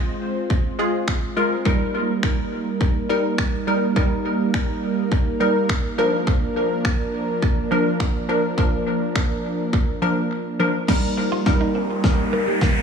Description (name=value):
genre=dance-pop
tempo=104 BPM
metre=4/4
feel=straight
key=Eb major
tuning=A4 = 441 Hz
part: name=wavetable chord stab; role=accompaniment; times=0.0-12.2 s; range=F3 to Eb5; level=-23 LUFS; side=left 1 dB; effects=phaser, sidechain pumping, tape echo
part: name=warm analog pad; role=sustained chords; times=0.0-12.8 s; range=F3 to C5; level=-24 LUFS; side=right 1 dB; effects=chorus, sidechain pumping
part: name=pop drum kit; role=drums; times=0.5-12.8 s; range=crash cymbal, finger snaps, kick drum, snare drum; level=-22 LUFS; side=equal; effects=tape echo
part: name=direct-recorded clean electric guitar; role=riff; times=10.9-12.7 s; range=G3 to F4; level=-28 LUFS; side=right 5 dB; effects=analog chorus, tape echo
part: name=riser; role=sound effects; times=11.4-12.8 s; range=none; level=-28 LUFS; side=equal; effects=none
room=light reverb, digital ambience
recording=echo-heavy mix, studio ambience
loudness=-19 LUFS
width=side -6 dB against mid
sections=0.0-10.9 A section; 10.9-12.8 B section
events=break 10.3-10.9; build-up 10.9-12.8; drum fill 10.9-12.8; riser 11.4-12.8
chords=0.0 Fm; 1.7 Eb; 6.0 Bb; 10.9 Eb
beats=0.50 1.08 | 1.66 2.23 2.81 3.38 | 3.96 4.54 5.12 5.69 | 6.27 6.85 7.42 8.00 | 8.58 9.15 9.73 10.31 | 10.88 11.46 12.04 12.62